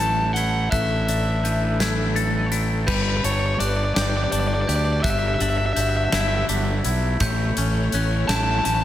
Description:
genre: post-rock.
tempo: 56 BPM (dotted quarters).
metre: 6/8.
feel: straight.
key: G lydian.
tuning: A4 = 441 Hz.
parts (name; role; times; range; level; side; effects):
overdriven electric guitar; melody; 0.0-8.8 s; B4 to A5; -25 LUFS; left 1 dB; spring reverb, analog delay.
rich studio string section; sustained chords; 0.0-8.8 s; G3 to C#5; -33 LUFS; left 1 dB; none.
glockenspiel with soft plastic mallets; arpeggios; 0.0-8.8 s; E6 to G7; -32 LUFS; right 3 dB; analog delay.
twangy electric guitar; arpeggios; 0.0-8.8 s; G3 to A4; -29 LUFS; left 4 dB; phaser, analog delay.
fuzz fingered electric bass; bass; 0.0-8.8 s; G1 to D2; -23 LUFS; equal; overdrive.
huge arena drum kit; drums; 0.0-8.8 s; crash cymbal, hi-hat, kick drum, snare drum; -27 LUFS; equal; none.
room: light reverb.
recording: none.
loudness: -19 LUFS.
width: side -12 dB against mid.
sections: 0.0-2.9 A section; 2.9-8.8 B section.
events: none.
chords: 0.0 A; 0.7 Dsus2/A; 2.9 G; 5.0 Em7/G; 7.2 A.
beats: | 0.72 1.80 | 2.88 3.96 | 5.04 6.12 | 7.21 8.29.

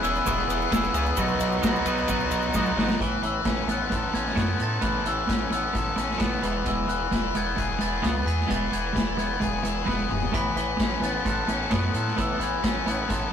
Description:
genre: indie rock.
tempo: 131 BPM.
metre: 4/4.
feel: straight.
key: unclear.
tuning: A4 = 440 Hz.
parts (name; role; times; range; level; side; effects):
glockenspiel with hard plastic mallets; melody; 0.0-13.3 s; C#6 to B6; -32 LUFS; left 1 dB; none.
breathy trumpet; second line; 0.0-2.5 s; G#3 to C#4; -37 LUFS; right 5 dB; none.
string machine, violins; sustained chords; 0.0-3.0 s; F#4 to B5; -41 LUFS; equal; none.
biting overdriven guitar; riff; 0.0-13.3 s; E3 to A4; -28 LUFS; left 3 dB; none.
twelve-string electric guitar; riff; 0.0-13.3 s; B2 to G#4; -30 LUFS; right 2 dB; none.
gritty driven synth bass; bass; 0.0-13.3 s; E1 to A2; -30 LUFS; equal; none.
vintage drum kit; drums; 0.0-13.2 s; hi-hat, kick drum, ride cymbal, snare drum, toms; -29 LUFS; equal; none.
tube shaker; percussion; 0.0-2.9 s; none; -40 LUFS; right 7 dB; none.
room: moderate booth ambience, RT60 0.2 s.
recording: rough rehearsal-room recording, warm saturation.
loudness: -23 LUFS.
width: side -8 dB against mid.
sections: 0.0-3.0 A section; 3.0-13.3 B section.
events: drum fill 2.5-3.0, 9.9-10.3.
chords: 0.0 E; 1.2 B; 3.0 Aadd9; 6.4 E; 10.3 Aadd9.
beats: 0.26 0.72 | 1.17 1.63 2.08 2.54 | 3.00 3.45 3.91 4.37 | 4.83 5.29 5.75 6.21 | 6.67 7.12 7.58 8.04 | 8.50 8.96 9.42 9.88 | 10.34 10.80 11.26 11.72 | 12.18 12.64 13.10.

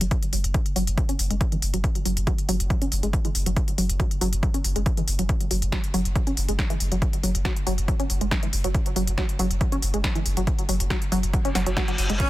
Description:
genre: driving peak-time techno.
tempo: 139 BPM.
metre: 4/4.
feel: straight.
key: unclear.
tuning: A4 = 442 Hz.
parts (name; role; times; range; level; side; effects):
tight sequenced synth; riff; 0.0-12.1 s; E3 to C#4; -29 LUFS; equal; chorus, tube saturation, sidechain pumping, tape echo.
warm sub bass; bass; 0.0-12.2 s; F#1; -26 LUFS; equal; overdrive, sidechain pumping, low-pass filter.
techno drum kit; drums; 0.0-12.3 s; crash cymbal, hi-hat, ride cymbal, snare drum; -30 LUFS; equal; sidechain pumping on hats, sidechain pumping on toms, sidechain pumping on cymbals.
electronic kick drum; drums; 0.1-12.3 s; none; -25 LUFS; equal; none.
reverse cymbal and sub drop; sound effects; 11.5-12.3 s; none; -31 LUFS; left 1 dB; none.
rich symphonic string section; texture; 12.2-12.3 s; C#4; -25 LUFS; equal; sidechain pumping.
room: digital ambience.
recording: dense, heavily limited modern master.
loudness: -22 LUFS.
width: side -16 dB against mid.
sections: 0.0-12.2 A section.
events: filter sweep on synth arpeggio sound 0.0-12.2; reverse cymbal 11.5-12.2.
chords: 0.0 F#5.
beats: | 0.11 0.54 0.98 1.41 | 1.84 2.27 2.70 3.13 | 3.56 4.00 4.43 4.86 | 5.29 5.72 6.16 6.59 | 7.02 7.45 7.88 8.31 | 8.74 9.18 9.61 10.04 | 10.47 10.90 11.34 11.77 | 12.20.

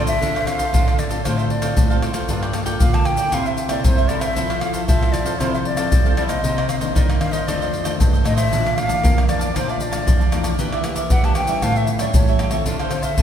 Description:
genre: samba and choro.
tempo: 116 BPM.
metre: 4/4.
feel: straight.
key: D minor.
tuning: A4 = 443 Hz.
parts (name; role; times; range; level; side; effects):
breathy concert flute; melody; 0.0-13.2 s; C5 to A5; -24 LUFS; left 1 dB; none.
cavaquinho; accompaniment; 0.0-13.2 s; D4 to A5; -28 LUFS; right 3 dB; none.
nylon-string guitar; accompaniment; 0.0-13.2 s; F2 to A4; -27 LUFS; left 4 dB; none.
nylon-string guitar; bass; 0.0-13.2 s; G2 to Bb3; -25 LUFS; equal; none.
tube shaker, surdo, pandeiro and tamborim; percussion; 0.1-13.2 s; none; -19 LUFS; equal; none.
room: wet scoring stage reverb, RT60 2.1 s.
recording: recorded in a church or concert hall.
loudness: -16 LUFS.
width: side -9 dB against mid.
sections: 0.2-13.2 A section.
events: none.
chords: 0.2 Dm7; 2.3 Gm9; 3.3 C6; 4.4 Fmaj7; 6.4 Cm9; 7.5 F13; 8.5 Bbmaj7#11; 10.6 Em7b5; 11.6 A7; 12.7 Dm7.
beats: | 0.22 0.74 1.25 1.77 | 2.29 2.81 3.33 3.85 | 4.37 4.88 5.40 5.92 | 6.44 6.96 7.48 8.00 | 8.52 9.03 9.55 10.07 | 10.59 11.11 11.63 12.15 | 12.67 13.19.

